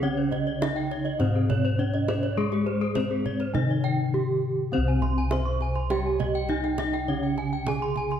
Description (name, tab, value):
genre	Balinese gamelan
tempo	102 BPM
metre	4/4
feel	straight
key	C pelog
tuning	A4 = 438 Hz
part	gamelan-type bronze metallophone	melody	0.0-8.2 s	Ab3 to C5	-28 LUFS	equal	none
part	gamelan-type bronze metallophone	accompaniment	0.0-8.2 s	C3 to Ab3	-32 LUFS	right 2 dB	none
part	gamelan-type bronze metallophone	arpeggios	0.0-8.1 s	G4 to C6	-33 LUFS	left 6 dB	none
part	gamelan-type bronze metallophone	arpeggios	0.0-8.2 s	Ab4 to Db6+35c	-35 LUFS	right 3 dB	none
part	gamelan-type bossed gongs	bass	0.0-8.2 s	C2 to Ab4	-28 LUFS	left 1 dB	none
part	kendang	percussion	0.3-8.2 s	none	-35 LUFS	right 5 dB	none
room	moderate scoring stage reverb, RT60 1.8 s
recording	dark, warm production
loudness	-23 LUFS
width	side -9 dB against mid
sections	0.0-8.2 A section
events	none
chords	none